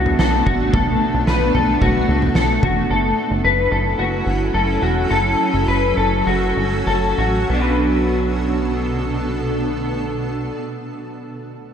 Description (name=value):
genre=dream pop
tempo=94-111 BPM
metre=4/4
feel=straight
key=B minor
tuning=A4 = 440 Hz
part: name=granular cloud pad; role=sustained chords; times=0.0-10.5 s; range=B2 to A4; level=-21 LUFS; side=right 2 dB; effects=built-in reverb
part: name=electric guitar at the edge of break-up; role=arpeggios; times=0.0-10.6 s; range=B3 to B4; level=-20 LUFS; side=left 3 dB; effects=analog chorus, ping-pong delay
part: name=plucky analog bass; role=bass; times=0.0-10.5 s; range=E1 to C#2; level=-22 LUFS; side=equal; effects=none
part: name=oversized low-tuned drum kit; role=drums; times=0.1-2.8 s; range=kick drum, snare drum, toms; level=-21 LUFS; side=equal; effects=none
room=moderate lush hall reverb, RT60 2.5 s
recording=none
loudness=-16 LUFS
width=side -8 dB against mid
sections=0.0-7.5 A section; 7.5-11.7 B section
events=slowing down 2.9-7.5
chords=0.0 Bm7; 2.9 F#m7; 7.5 Bm7